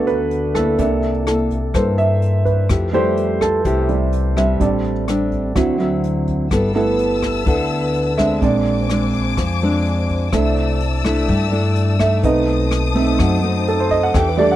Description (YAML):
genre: bossa nova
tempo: 126 BPM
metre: 4/4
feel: straight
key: unclear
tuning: A4 = 440 Hz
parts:
  - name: nylon-string guitar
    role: accompaniment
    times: 0.0-14.6 s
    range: G2 to A4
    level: -20 LUFS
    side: left 1 dB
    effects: none
  - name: warm concert grand piano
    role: accompaniment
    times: 0.0-14.6 s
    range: F#3 to G5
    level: -20 LUFS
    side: right 4 dB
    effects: none
  - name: upright bass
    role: bass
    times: 0.0-14.6 s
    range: G1 to G2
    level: -21 LUFS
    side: left 1 dB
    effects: none
  - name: jazz brush drum kit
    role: drums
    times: 0.1-14.5 s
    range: hi-hat, kick drum, rim click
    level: -24 LUFS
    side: left 1 dB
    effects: none
  - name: warm symphonic string section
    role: sustained chords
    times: 6.5-14.6 s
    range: A4 to E6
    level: -26 LUFS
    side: left 6 dB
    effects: none
room: light reverb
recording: dry, close 1970s-style studio recording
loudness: -15 LUFS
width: side -13 dB against mid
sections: 0.0-14.6 A section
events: grand piano solo 0.0-14.6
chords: 0.0 Gmaj9 (rootless); 0.8 C13; 2.7 Fmaj9; 4.6 Am7; 5.6 D9; 6.5 G69; 8.4 Bb9; 10.3 C69; 12.2 B7b9